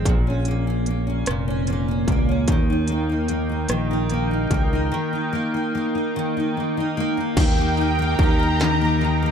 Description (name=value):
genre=six-eight pop ballad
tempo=49 BPM (dotted quarters)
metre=6/8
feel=straight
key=unclear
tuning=A4 = 440 Hz
part: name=picked steel-string acoustic guitar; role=accompaniment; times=0.0-9.3 s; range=Bb2 to G4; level=-23 LUFS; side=left 1 dB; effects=double-tracked left and right, tape echo
part: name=modern bright fingered electric bass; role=bass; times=0.0-9.3 s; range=F1 to Eb2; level=-23 LUFS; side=equal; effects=none
part: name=industrial drum kit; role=drums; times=0.1-9.2 s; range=crash cymbal, hi-hat, kick drum, ride cymbal, rim click, snare drum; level=-22 LUFS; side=equal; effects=distortion
part: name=chorused pulse-width pad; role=sustained chords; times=2.5-9.3 s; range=Eb4 to G5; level=-28 LUFS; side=right 1 dB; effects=none
part: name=warm studio violin section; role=second line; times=7.4-9.3 s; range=G5 to Bb5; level=-25 LUFS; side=right 1 dB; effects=tape echo
room=digital ambience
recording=echo-heavy mix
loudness=-19 LUFS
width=side -7 dB against mid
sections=0.0-7.4 A section; 7.4-9.3 B section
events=break 4.9-7.4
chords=0.1 Bbm; 2.5 Eb